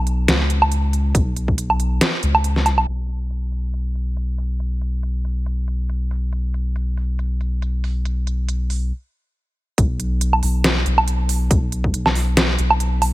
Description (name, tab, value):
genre	deep dubstep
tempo	139 BPM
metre	4/4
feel	swing 55% on 16ths, half-time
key	unclear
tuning	A4 = 440 Hz
part	soft dub sub bass	bass	0.0-13.1 s	B1 to C#2	-20 LUFS	equal	none
part	dubstep drum kit	drums	0.1-13.1 s	hi-hat, snare drum, woodblock	-19 LUFS	right 1 dB	none
part	electronic kick drum	drums	1.1-1.6, 9.8-11.9 s	none	-19 LUFS	equal	none
room	little or no reverb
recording	low-pass filter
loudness	-18 LUFS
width	side -18 dB against mid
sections	0.0-2.9 A section; 2.9-9.8 B section; 9.8-13.1 C section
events	filter sweep 2.9-9.8; stop 8.9-9.8; drop 9.8-13.1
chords	none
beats	0.28 0.71 | 1.15 1.58 2.01 2.44 | 2.87 3.31 3.74 4.17 | 4.60 5.03 5.46 5.89 | 6.33 6.76 7.19 7.62 | 8.05 8.48 8.92 9.35 | 9.78 10.21 10.64 11.07 | 11.51 11.94 12.37 12.80